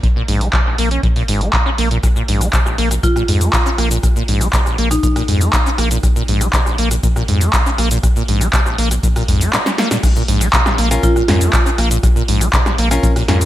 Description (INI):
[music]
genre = acid house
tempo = 120 BPM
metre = 4/4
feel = straight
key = Bb minor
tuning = A4 = 436 Hz
[part]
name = acid bass, saw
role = riff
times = 0.0-13.5 s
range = Bb1 to Db4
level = -20 LUFS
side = equal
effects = tube saturation, wide subtle chorus, digital delay
[part]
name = electronic kick drum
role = drums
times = 0.0-13.1 s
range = none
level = -16 LUFS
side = equal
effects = none
[part]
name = punchy analog drum machine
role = drums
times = 0.0-13.5 s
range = crash cymbal, handclaps, hi-hat, rim click, shaker, snare drum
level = -19 LUFS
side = equal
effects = gated reverb
[part]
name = round analog bass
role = bass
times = 0.3-13.5 s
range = Ab1 to F2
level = -17 LUFS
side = equal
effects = sidechain pumping
[part]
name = marimba with medium hard mallets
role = melody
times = 3.0-5.1, 11.0-11.7 s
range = Eb4 to F4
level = -23 LUFS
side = equal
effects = ping-pong delay
[part]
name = bright grand piano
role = stabs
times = 10.9-13.4 s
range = Db4 to Bb4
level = -21 LUFS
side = left 3 dB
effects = digital delay
[sound]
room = light reverb, digital ambience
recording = bright 1980s-style digital production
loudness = -13 LUFS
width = side -14 dB against mid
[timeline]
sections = 0.0-10.0 A section; 10.0-13.5 B section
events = kick drops out 9.5-10.0; drum fill 9.5-10.0; drop 10.0-13.5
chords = 0.0 N.C.; 10.0 Bbm